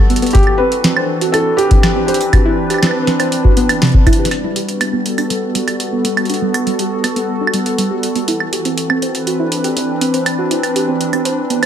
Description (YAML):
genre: IDM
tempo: 121 BPM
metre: 4/4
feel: straight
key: G major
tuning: A4 = 440 Hz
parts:
  - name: hollow soft pad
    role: sustained chords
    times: 0.0-11.7 s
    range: E3 to B4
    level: -18 LUFS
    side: left 1 dB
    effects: chorus
  - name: soft round pluck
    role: arpeggios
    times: 0.1-11.7 s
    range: C3 to C5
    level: -19 LUFS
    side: right 2 dB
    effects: chorus, vintage 12-bit sampler grit, ping-pong delay
  - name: booming analog drum machine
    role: drums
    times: 0.1-11.7 s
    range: claves, hi-hat, snare drum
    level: -19 LUFS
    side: right 2 dB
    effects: studio ambience
  - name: felt-muted upright piano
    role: melody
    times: 0.3-3.5 s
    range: G4 to B4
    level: -18 LUFS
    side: left 1 dB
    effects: ping-pong delay
  - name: electronic kick drum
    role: drums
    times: 0.3-4.2 s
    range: none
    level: -11 LUFS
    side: equal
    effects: studio ambience
room: light reverb, digital ambience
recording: none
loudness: -13 LUFS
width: side -9 dB against mid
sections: 0.0-4.3 A section; 4.3-11.7 B section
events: drum fill 4.1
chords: 0.3 Cmaj9; 4.3 Gmaj9; 8.3 Cmaj9